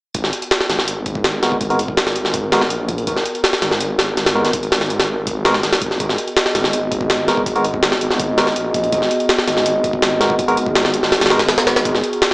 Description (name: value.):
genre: drum and bass, jungle.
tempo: 164 BPM.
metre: 4/4.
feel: straight.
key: G# minor.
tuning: A4 = 440 Hz.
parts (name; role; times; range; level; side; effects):
warbly tape-like pad; sustained chords; 0.1-12.3 s; B3 to D#5; -22 LUFS; equal; chorus, built-in reverb.
detuned saw bass; bass; 0.1-12.0 s; G#1 to A#1; -24 LUFS; equal; none.
jungle sampler-style drum kit; drums; 0.1-12.3 s; hi-hat, kick drum, snare drum; -17 LUFS; equal; none.
barky tine electric piano; stabs; 1.4-11.4 s; G#3 to A#4; -21 LUFS; equal; low-pass filter, dub echo.
room: moderate echo chamber reverb, RT60 1.5 s.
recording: small speaker sound.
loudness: -14 LUFS.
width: side -25 dB against mid.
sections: 0.1-12.3 A section.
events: filter sweep on tine electric piano 0.1-12.3.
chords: 0.1 G#m9.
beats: | 0.15 0.51 0.88 1.25 | 1.61 1.98 2.34 2.71 | 3.08 3.44 3.81 4.17 | 4.54 4.90 5.27 5.64 | 6.00 6.37 6.73 7.10 | 7.46 7.83 8.20 8.56 | 8.93 9.29 9.66 10.03 | 10.39 10.76 11.12 11.49 | 11.86 12.22.